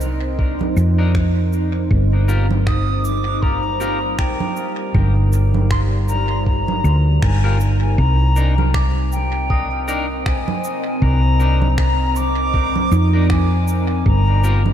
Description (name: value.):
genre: ambient dub.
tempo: 79 BPM.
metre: 4/4.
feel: swing 57% on 16ths.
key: C minor.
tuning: A4 = 439 Hz.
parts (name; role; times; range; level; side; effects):
deep dark ambient pad; sustained chords; 0.0-14.7 s; G3 to F5; -25 LUFS; equal; chorus, built-in reverb.
hollow-body short-scale fingered electric bass; bass; 0.0-14.7 s; G1 to F2; -16 LUFS; equal; none.
electronic cabasa, congas and finger snaps; drums; 0.0-14.7 s; none; -29 LUFS; right 5 dB; overdrive, dub echo.
electronic kick drum; drums; 0.4-14.2 s; none; -21 LUFS; equal; none.
clean electric guitar; stabs; 1.0-14.6 s; D4 to Bb4; -31 LUFS; left 3 dB; lush chorus, dub echo.
silver concert flute; melody; 2.7-14.7 s; G5 to Eb6; -24 LUFS; left 2 dB; dub echo.
soft synth bell; arpeggios; 8.7-14.2 s; Eb4 to Eb6; -29 LUFS; right 6 dB; chorus, phaser, dub echo.
room: light reverb, digital ambience.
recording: none.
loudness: -15 LUFS.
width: side -10 dB against mid.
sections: 0.0-8.0 A section; 8.0-14.7 B section.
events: band accent 7.2-7.6.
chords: 0.0 Cm7; 1.9 Gm7; 8.0 Cm9; 14.1 Gm7.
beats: 0.39 1.15 | 1.91 2.67 3.43 4.19 | 4.95 5.71 6.46 7.22 | 7.98 8.74 9.50 10.26 | 11.02 11.78 12.54 13.30 | 14.06.